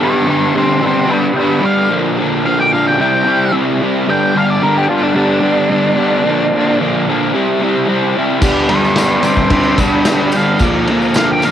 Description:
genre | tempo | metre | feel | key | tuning
garage rock duo or trio | 110 BPM | 4/4 | straight | G major | A4 = 440 Hz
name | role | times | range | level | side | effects
octave-fuzz lead guitar | melody | 0.0-11.5 s | D4 to G5 | -15 LUFS | equal | distortion
crunchy overdriven guitar | riff | 0.0-11.5 s | G2 to E4 | -13 LUFS | equal | cassette tape
overdriven combo organ | sustained chords | 8.4-11.5 s | D4 to B4 | -22 LUFS | left 1 dB | cassette tape
vintage drum kit | drums | 8.4-11.5 s | crash cymbal, kick drum, ride cymbal, snare drum | -17 LUFS | equal | cassette tape
tambourine | percussion | 8.4-11.5 s | none | -30 LUFS | left 3 dB | none
room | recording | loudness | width
light reverb | home recording on cassette | -11 LUFS | side -10 dB against mid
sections
0.0-11.5 A section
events
none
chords
0.0 G; 1.9 Bb; 3.0 C; 4.1 G; 6.2 Bb; 7.3 C; 8.4 G; 10.6 Bb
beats
0.27 0.81 1.36 | 1.90 2.44 2.99 3.53 | 4.07 4.62 5.16 5.70 | 6.24 6.79 7.33 7.87 | 8.42 8.96 9.51 10.06 | 10.60 11.15

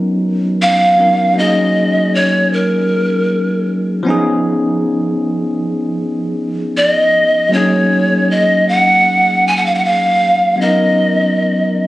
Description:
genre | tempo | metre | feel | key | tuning
R&B | 78 BPM | 4/4 | straight | F# major | A4 = 440 Hz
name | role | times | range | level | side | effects
bell-like tine electric piano | accompaniment | 0.0-11.9 s | E#3 to A#4 | -15 LUFS | equal | medium stereo tremolo
breathy pan flute | melody | 0.6-11.9 s | A#4 to G#5 | -12 LUFS | equal | none
room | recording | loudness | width
light reverb, small room ambience | recorded on a phone in the room, studio reverb | -11 LUFS | side -17 dB against mid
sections
0.0-11.9 A section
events
none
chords
0.0 Bmaj9; 1.4 F#69; 4.1 C#9; 7.5 F#69; 10.6 Bmaj9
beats
0.60 | 1.37 2.14 2.90 3.67 | 4.44 5.21 5.98 6.75 | 7.52 8.29 9.06 9.83 | 10.60 11.37

